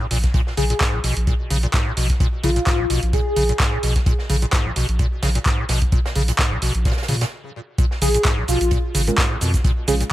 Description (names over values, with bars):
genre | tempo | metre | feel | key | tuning
acid house | 129 BPM | 4/4 | swing 55% on 16ths | Bb phrygian | A4 = 440 Hz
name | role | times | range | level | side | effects
acid bass, square | riff | 0.0-10.0 s | Ab2 to Db3 | -25 LUFS | equal | tube saturation, wide subtle chorus, sidechain pumping, tape echo
saturated sub bass | bass | 0.1-10.0 s | Ab1 to Bb2 | -21 LUFS | equal | sidechain pumping
open jazz drum kit | drums | 0.1-10.0 s | hi-hat, snare drum | -33 LUFS | right 3 dB | sidechain pumping on hats, high-pass filter on hats, high-pass filter on snare, high-pass filter on room
punchy analog drum machine | drums | 0.1-10.1 s | cabasa, handclaps, hi-hat | -24 LUFS | right 1 dB | overdrive
electronic kick drum | drums | 0.2-9.7 s | none | -20 LUFS | equal | none
airy dreamy lead | melody | 0.6-3.8, 8.0-8.7 s | F4 to Ab4 | -25 LUFS | left 1 dB | chorus, tape echo
deep mellow chord stab | stabs | 9.1-10.0 s | Ab3 to Bb4 | -24 LUFS | right 4 dB | chorus, cassette tape, tape echo
room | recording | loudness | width
little or no reverb | none | -17 LUFS | side -15 dB against mid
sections
0.0-7.8 A section; 7.8-10.1 B section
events
stop 7.3-7.8; drop 7.8-10.1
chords
0.0 Bb7(no3); 7.8 Bbm7